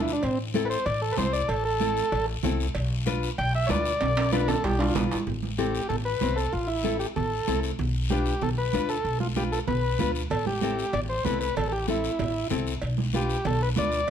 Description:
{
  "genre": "latin, cumbia",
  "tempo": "191 BPM",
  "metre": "4/4",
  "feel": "straight",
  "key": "A minor",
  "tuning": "A4 = 439 Hz",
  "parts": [
    { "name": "combo organ", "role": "melody", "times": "0.0-14.1 s", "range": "C4 to G5", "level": "-28 LUFS", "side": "equal", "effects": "plate reverb" },
    { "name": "nylon-string guitar", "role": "accompaniment", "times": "0.0-14.0 s", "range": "C4 to D5", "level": "-30 LUFS", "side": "left 6 dB", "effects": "none" },
    { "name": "upright bass", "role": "bass", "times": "0.0-14.0 s", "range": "A1 to D2", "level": "-29 LUFS", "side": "equal", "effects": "none" },
    { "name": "guiro", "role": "percussion", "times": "0.1-14.1 s", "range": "none", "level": "-38 LUFS", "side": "left 6 dB", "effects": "none" },
    { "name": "congas", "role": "percussion", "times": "0.2-14.1 s", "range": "none", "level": "-33 LUFS", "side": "right 8 dB", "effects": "none" },
    { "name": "cowbell and timbales", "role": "percussion", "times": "0.2-5.2, 10.3-14.1 s", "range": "none", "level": "-32 LUFS", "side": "right 4 dB", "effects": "none" }
  ],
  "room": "light reverb",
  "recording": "none",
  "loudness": "-24 LUFS",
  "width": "side -8 dB against mid",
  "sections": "0.0-5.3 A section; 5.3-14.1 B section",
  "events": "transistor combo organ solo 0.0-5.3; drum fill 4.0-5.3",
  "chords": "0.2 Am; 2.8 Bdim; 5.3 Am; 7.8 Bdim; 10.3 Am7; 12.8 Bdim"
}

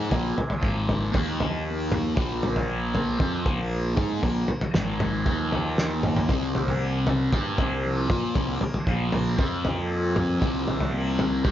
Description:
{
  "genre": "psychedelic rock",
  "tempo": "116 BPM",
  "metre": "4/4",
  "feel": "straight",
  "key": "unclear",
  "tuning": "A4 = 445 Hz",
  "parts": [
    { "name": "fuzz guitar", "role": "riff", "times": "0.0-11.5 s", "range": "Ab2 to Bb4", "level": "-27 LUFS", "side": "equal", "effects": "distortion, phaser" },
    { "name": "fuzz fingered electric bass", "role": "bass", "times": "0.0-11.5 s", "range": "Ab1 to Bb2", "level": "-30 LUFS", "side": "equal", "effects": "overdrive" },
    { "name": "tanpura", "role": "drone", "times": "0.0-11.5 s", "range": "Bb2 to Bb3", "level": "-34 LUFS", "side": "equal", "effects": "none" },
    { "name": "cloth-damped thuddy drum kit", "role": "drums", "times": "0.1-11.5 s", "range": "kick drum, snare drum, toms", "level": "-26 LUFS", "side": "equal", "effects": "none" }
  ],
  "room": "light reverb, small room ambience",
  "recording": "nothing above 7.5 kHz",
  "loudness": "-23 LUFS",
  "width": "side -11 dB against mid",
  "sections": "0.0-11.5 A section",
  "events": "none",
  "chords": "0.0 Bb5; 0.6 Ab5; 1.1 Eb5; 2.2 Bb5; 4.7 Ab5; 5.3 Eb5; 6.3 C5; 8.9 Bb5; 9.4 F5; 10.4 C7(no3)"
}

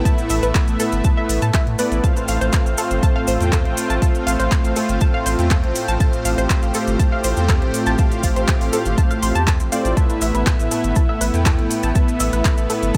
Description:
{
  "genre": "progressive house",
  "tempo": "121 BPM",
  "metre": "4/4",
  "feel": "straight",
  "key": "unclear",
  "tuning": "A4 = 440 Hz",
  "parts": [
    { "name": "lush unison pad", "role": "sustained chords", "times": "0.0-13.0 s", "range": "A3 to G4", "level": "-30 LUFS", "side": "equal", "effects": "chorus, sidechain pumping" },
    { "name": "soft supersaw", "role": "stabs", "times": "0.0-13.0 s", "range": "A2 to G5", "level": "-25 LUFS", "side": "equal", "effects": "cassette tape, sidechain pumping, tape echo" },
    { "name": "saturated sub bass", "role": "bass", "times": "0.0-12.9 s", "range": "G1 to A2", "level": "-24 LUFS", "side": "equal", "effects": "tube saturation, sidechain pumping" },
    { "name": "tight sequenced synth", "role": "arpeggios", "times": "0.1-13.0 s", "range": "A4 to C6", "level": "-29 LUFS", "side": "equal", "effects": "chorus, sidechain pumping, tape echo" },
    { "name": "deep house drum kit", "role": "drums", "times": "0.1-13.0 s", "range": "handclaps, hi-hat", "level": "-29 LUFS", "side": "equal", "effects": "none" },
    { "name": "electronic kick drum", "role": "drums", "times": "0.1-13.0 s", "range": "none", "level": "-20 LUFS", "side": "equal", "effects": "none" },
    { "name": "maracas", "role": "percussion", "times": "0.1-13.0 s", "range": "none", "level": "-32 LUFS", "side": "equal", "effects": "none" }
  ],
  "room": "little or no reverb",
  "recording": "none",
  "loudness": "-18 LUFS",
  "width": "mono",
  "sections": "0.0-13.0 A section",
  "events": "none",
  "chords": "0.0 Asus2; 2.0 F; 10.0 Asus2"
}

